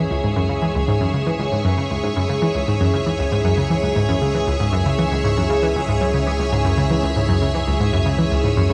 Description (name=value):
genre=ambient, sequencer-driven space music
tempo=117 BPM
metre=4/4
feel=straight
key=C# minor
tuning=A4 = 439 Hz
part: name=string machine, full ensemble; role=sustained chords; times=0.0-8.7 s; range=G#4 to E5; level=-24 LUFS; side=equal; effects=ensemble chorus
part: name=analog pluck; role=riff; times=0.0-8.7 s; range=C#2 to E3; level=-21 LUFS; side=equal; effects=chorus, tape echo
part: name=analog drone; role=bass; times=0.0-8.7 s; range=C#2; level=-30 LUFS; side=equal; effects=chorus
room=wet lush hall reverb, RT60 2.8 s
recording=dreamy mix soaked in reverb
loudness=-19 LUFS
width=mono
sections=0.0-8.7 A section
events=fade-in on synth drone 0.0-8.7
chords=0.0 C#m